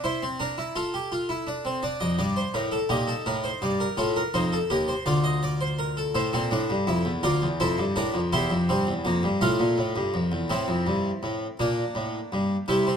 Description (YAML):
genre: classical, baroque-style 4-part fugue for harpsichord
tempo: 55 BPM (dotted quarters)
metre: 6/8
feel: straight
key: Bb major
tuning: A4 = 439 Hz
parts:
  - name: harpsichord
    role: solo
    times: 0.0-13.0 s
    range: D2 to F5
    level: -23 LUFS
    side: equal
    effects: none
room: moderate recital hall reverb, RT60 1.5 s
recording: close, detailed microphones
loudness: -23 LUFS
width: side -7 dB against mid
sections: 0.0-10.5 A section; 10.5-13.0 B section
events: none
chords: 0.0 C7; 0.8 F; 1.8 Bb; 2.9 Eb; 4.0 F7; 5.1 Bb/D; 6.2 F/A; 7.2 Bb/D; 8.3 C7/E; 9.4 F/A; 10.5 Am; 11.6 Gm